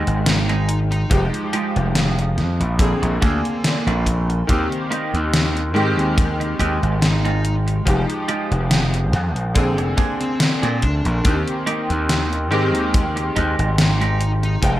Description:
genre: vaporwave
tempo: 71 BPM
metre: 4/4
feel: swing 54% on 16ths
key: unclear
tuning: A4 = 438 Hz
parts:
  - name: bright electric grand piano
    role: accompaniment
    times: 0.0-14.8 s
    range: D3 to G5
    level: -24 LUFS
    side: left 1 dB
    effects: ensemble chorus, tape echo
  - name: warbly tape-like pad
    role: sustained chords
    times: 0.0-14.8 s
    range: Ab3 to Eb6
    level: -30 LUFS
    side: right 1 dB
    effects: chorus, built-in reverb, vintage 12-bit sampler grit
  - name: semi-hollow electric guitar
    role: riff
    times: 0.0-14.5 s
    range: Ab3 to Ab4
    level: -26 LUFS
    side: right 3 dB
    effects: wide subtle chorus, tape echo
  - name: gritty slap bass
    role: bass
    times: 0.0-14.8 s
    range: F1 to Bb2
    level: -20 LUFS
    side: equal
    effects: overdrive
  - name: gated 80s digital drum machine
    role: drums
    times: 0.1-14.8 s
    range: hi-hat, snare drum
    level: -22 LUFS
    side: left 1 dB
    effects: gated reverb, gated reverb snare, overdrive
  - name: fuzz lead guitar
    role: melody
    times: 0.3-14.7 s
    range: Bb3 to Eb4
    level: -29 LUFS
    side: equal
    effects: distortion, tape echo
  - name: kick drum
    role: drums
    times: 1.1-14.8 s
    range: none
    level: -21 LUFS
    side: equal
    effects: none
room: moderate studio reverb, RT60 0.6 s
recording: rough home demo mix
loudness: -17 LUFS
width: side -14 dB against mid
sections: 0.0-14.8 A section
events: none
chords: 0.0 Abmaj7; 1.1 Fm9; 2.8 Bb9; 4.5 Eb6; 5.8 Abmaj7; 7.9 Fm9; 9.6 Bb9; 11.2 Eb6; 12.5 Abmaj7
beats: 0.26 | 1.10 1.95 2.79 3.64 | 4.49 5.33 6.18 7.02 | 7.87 8.71 9.56 10.40 | 11.25 12.09 12.94 13.78 | 14.63

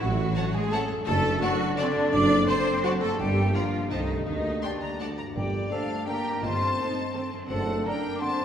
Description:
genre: cinematic, playful, whimsical film cue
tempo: 169 BPM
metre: 3/4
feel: straight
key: G minor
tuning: A4 = 440 Hz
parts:
  - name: xylophone with soft rubber mallets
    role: melody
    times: 0.0-8.4 s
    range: Bb4 to D6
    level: -37 LUFS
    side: left 1 dB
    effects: none
  - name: silver concert flute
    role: second line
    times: 0.0-8.4 s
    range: D5 to D6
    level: -34 LUFS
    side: left 1 dB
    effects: none
  - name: clear studio viola section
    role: accompaniment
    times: 0.0-8.4 s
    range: D3 to D5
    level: -30 LUFS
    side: equal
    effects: none
  - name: concert harp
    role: arpeggios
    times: 0.0-8.4 s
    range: F#2 to D5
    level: -34 LUFS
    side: left 4 dB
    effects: none
  - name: mellow tuba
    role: bass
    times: 0.0-7.8 s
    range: F#1 to D2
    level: -36 LUFS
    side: right 2 dB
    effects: none
  - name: rich studio cello section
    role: bass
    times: 0.0-8.4 s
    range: D3 to G4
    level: -32 LUFS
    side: right 2 dB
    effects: none
  - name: rich studio double bass section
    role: bass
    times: 0.0-7.8 s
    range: F#1 to D2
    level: -30 LUFS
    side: right 1 dB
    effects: none
  - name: rich studio violin section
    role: melody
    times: 0.4-8.4 s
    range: D5 to C6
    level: -39 LUFS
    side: left 2 dB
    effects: none
  - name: rich studio violin section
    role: second line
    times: 0.4-8.4 s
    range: C4 to G5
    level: -39 LUFS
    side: equal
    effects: none
  - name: dark French horn section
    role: sustained chords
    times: 0.4-8.4 s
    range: G3 to A4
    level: -33 LUFS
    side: equal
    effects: none
  - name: mellow cor anglais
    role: second line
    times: 5.4-8.4 s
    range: G4 to C5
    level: -34 LUFS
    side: equal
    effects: none
room: wet scoring stage reverb, RT60 1.9 s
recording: heard from further back in the room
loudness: -24 LUFS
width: side -8 dB against mid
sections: 0.0-5.4 A section; 5.4-8.4 B section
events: none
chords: 0.0 F#m/A; 1.1 D/F#; 2.1 D7/F#; 3.2 Gm; 3.9 Adim/C; 4.3 Gm/D; 5.0 D; 5.4 Gm; 6.4 Am7b5/G; 7.5 D7/F#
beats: | 0.01 0.37 0.72 | 1.07 1.43 1.78 | 2.14 2.49 2.85 | 3.20 3.55 3.91 | 4.27 4.64 5.00 | 5.37 5.72 6.08 | 6.44 6.79 7.15 | 7.51 7.86 8.22

